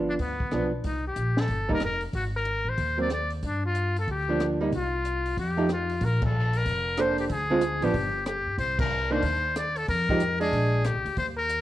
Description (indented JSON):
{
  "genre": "jazz, small-group swing and bop",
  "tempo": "186 BPM",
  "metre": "4/4",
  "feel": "swing 64% on 8ths",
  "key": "unclear",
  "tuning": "A4 = 440 Hz",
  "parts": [
    { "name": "archtop guitar, miked and amplified", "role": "accompaniment", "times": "0.0-10.8 s", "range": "D3 to C5", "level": "-27 LUFS", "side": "right 2 dB", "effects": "none" },
    { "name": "upright bass", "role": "bass", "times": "0.0-11.6 s", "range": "F1 to G2", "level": "-29 LUFS", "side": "equal", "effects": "none" },
    { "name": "trumpet with metal mute", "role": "melody", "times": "0.1-11.6 s", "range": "B3 to D5", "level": "-28 LUFS", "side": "left 2 dB", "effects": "none" },
    { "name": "compact cocktail drum kit", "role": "drums", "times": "0.2-11.6 s", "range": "crash cymbal, hi-hat, kick drum, rim click, snare drum", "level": "-33 LUFS", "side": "equal", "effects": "none" }
  ],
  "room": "light reverb",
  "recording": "worn, warbling old tape, cassette tape, warbly pitch drift",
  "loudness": "-24 LUFS",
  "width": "side -14 dB against mid",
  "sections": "0.0-6.0 A section; 6.0-11.6 B section",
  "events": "band accent 6.2, 8.8",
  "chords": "0.0 G7; 0.8 C7(no3); 2.1 Abadd9; 3.4 Gm7; 4.7 Csus4; 5.4 F9; 6.0 Bbmaj9; 7.3 Dm7b5; 7.9 N.C.; 8.6 Cm7; 9.9 Fm9; 10.5 Bb13"
}